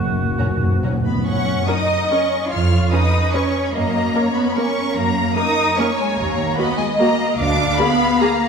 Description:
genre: classical, orchestral ballroom waltz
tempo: 147 BPM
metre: 3/4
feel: uneven beats, rubato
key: F# major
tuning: A4 = 440 Hz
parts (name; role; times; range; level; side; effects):
- warm oboe; second line; 0.0-0.8 s; F#4; -28 LUFS; right 4 dB; none
- dark French horn section; sustained chords; 0.0-1.0 s; A#3 to F#4; -30 LUFS; left 1 dB; none
- rich symphonic cello section; bass; 0.0-8.5 s; F#2 to E#4; -22 LUFS; right 1 dB; none
- rich symphonic double bass section; bass; 0.0-7.7 s; F#1 to F#2; -22 LUFS; right 2 dB; none
- timpani; percussion; 0.0-1.2 s; F#2; -21 LUFS; left 1 dB; none
- rich symphonic violin section; melody; 0.4-8.5 s; G#5 to E#6; -23 LUFS; left 3 dB; none
- warm symphonic violin section; second line; 0.4-8.5 s; F#4 to F#5; -23 LUFS; equal; none
- warm symphonic viola section; accompaniment; 0.4-8.3 s; A#3 to B4; -24 LUFS; equal; none
room: wet scoring stage reverb, RT60 1.6 s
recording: heard from further back in the room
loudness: -16 LUFS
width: side -6 dB against mid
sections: 0.0-1.3 A section; 1.3-8.5 A section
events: timpani fill 0.0-1.3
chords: 0.0 F#; 2.5 C#7/E#; 3.7 F#; 6.2 D#m; 7.4 A#7/D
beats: 0.39 0.84 | 1.26 1.68 2.11 | 2.51 2.92 3.33 | 3.73 4.13 4.56 | 4.96 5.36 5.78 | 6.17 6.57 6.99 | 7.39 7.79 8.20

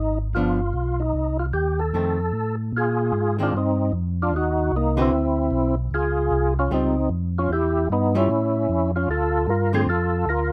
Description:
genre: jazz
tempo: 151 BPM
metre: 4/4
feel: swing 64% on 8ths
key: unclear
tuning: A4 = 441 Hz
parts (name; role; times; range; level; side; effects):
- percussive tonewheel organ; melody; 0.0-10.5 s; Bb3 to C5; -25 LUFS; equal; slow rotary speaker, overdrive, chorus vibrato
- mellow tonewheel organ; bass; 0.0-10.5 s; G1 to Bb2; -26 LUFS; equal; overdrive, chorus vibrato, slow rotary speaker
- archtop guitar, miked and amplified; accompaniment; 0.4-9.9 s; D3 to Cb5; -27 LUFS; equal; none
room: light reverb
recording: none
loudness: -22 LUFS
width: mono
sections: 0.0-2.7 A section; 2.7-10.5 B section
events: none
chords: 0.4 G7; 1.1 Cm; 1.9 F7; 2.7 Bb9sus4; 4.3 Ebm; 5.1 Dsus2; 5.9 Dbmaj9#11; 7.5 Em; 8.3 A; 9.1 Dm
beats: 0.35 0.75 | 1.15 1.55 1.95 2.34 | 2.74 3.14 3.54 3.93 | 4.33 4.73 5.12 5.52 | 5.92 6.31 6.71 7.11 | 7.50 7.90 8.29 8.69 | 9.08 9.48 9.88 10.27

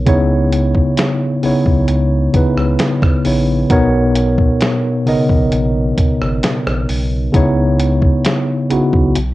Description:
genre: contemporary R&B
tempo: 66 BPM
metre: 4/4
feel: straight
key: unclear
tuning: A4 = 440 Hz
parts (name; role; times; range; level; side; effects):
- mellow tine electric piano; accompaniment; 0.0-9.2 s; B2 to D#5; -14 LUFS; equal; medium stereo tremolo, cassette tape
- saturated sub bass; bass; 0.0-9.3 s; G#1 to C#2; -19 LUFS; equal; none
- dusty soul sampler-style drum kit; drums; 0.1-9.3 s; hi-hat, kick drum, rim click, snare drum; -17 LUFS; equal; cassette tape
room: light reverb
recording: home recording on cassette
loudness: -12 LUFS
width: side -17 dB against mid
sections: 0.0-9.3 A section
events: none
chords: 0.1 C#m9; 3.7 Bmaj9; 7.3 C#m9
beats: | 0.07 0.98 1.89 2.79 | 3.70 4.61 5.52 6.43 | 7.34 8.25 9.16

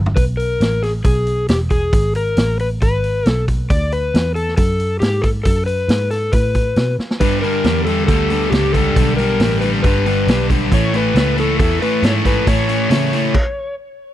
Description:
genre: blues rock power trio and southern rock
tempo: 137 BPM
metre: 4/4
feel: straight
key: unclear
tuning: A4 = 442 Hz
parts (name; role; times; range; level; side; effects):
- vintage muted picked electric bass; bass; 0.0-13.3 s; E1 to C#3; -19 LUFS; equal; none
- vintage drum kit; drums; 0.1-13.4 s; crash cymbal, hi-hat, kick drum, snare drum, toms; -18 LUFS; equal; none
- overdriven slide guitar; melody; 0.2-13.7 s; G4 to D5; -20 LUFS; left 2 dB; none
- overdriven electric guitar; riff; 7.2-13.3 s; G2 to A3; -18 LUFS; left 1 dB; none
room: little or no reverb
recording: dry, close 1970s-style studio recording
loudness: -14 LUFS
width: side -12 dB against mid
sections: 0.2-14.1 A section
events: drum fill 0.0, 7.0; stop 13.3-14.1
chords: 0.2 E; 3.7 D; 7.2 G; 10.7 A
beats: | 0.17 0.61 1.05 1.49 | 1.93 2.37 2.81 3.26 | 3.70 4.14 4.58 5.02 | 5.46 5.90 6.33 6.77 | 7.21 7.65 8.09 8.53 | 8.96 9.40 9.84 10.28 | 10.72 11.15 11.59 12.03 | 12.47 12.91 13.35

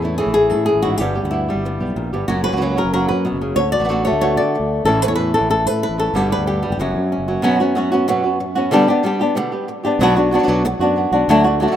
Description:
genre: flamenco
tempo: 186 BPM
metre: 4/4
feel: straight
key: unclear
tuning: A4 = 441 Hz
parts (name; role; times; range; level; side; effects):
- flamenco guitar; melody; 0.0-11.8 s; F#2 to D5; -17 LUFS; left 1 dB; none
- flamenco guitar; stabs; 0.0-11.8 s; B2 to G4; -22 LUFS; right 4 dB; none
- sustaining fretless electric bass; bass; 0.0-7.4, 10.0-11.7 s; F#1 to D3; -23 LUFS; equal; none
room: moderate plate reverb, RT60 3.6 s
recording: rough home demo mix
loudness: -15 LUFS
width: side -10 dB against mid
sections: 0.0-7.4 A section; 7.4-11.8 B section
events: none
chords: 0.0 A; 1.0 G; 2.3 F#; 3.6 D6; 4.9 A; 6.1 G; 6.8 F#; 7.4 F#sus4; 8.7 G; 10.0 Bm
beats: 0.03 0.35 0.68 | 1.00 1.32 1.64 1.96 | 2.29 2.61 2.93 3.25 | 3.57 3.89 4.21 4.54 | 4.86 5.18 5.50 5.82 | 6.14 6.47 6.79 7.11 | 7.43 7.75 8.07 8.39 | 8.71 9.04 9.36 9.68 | 10.00 10.32 10.64 10.96 | 11.28 11.60

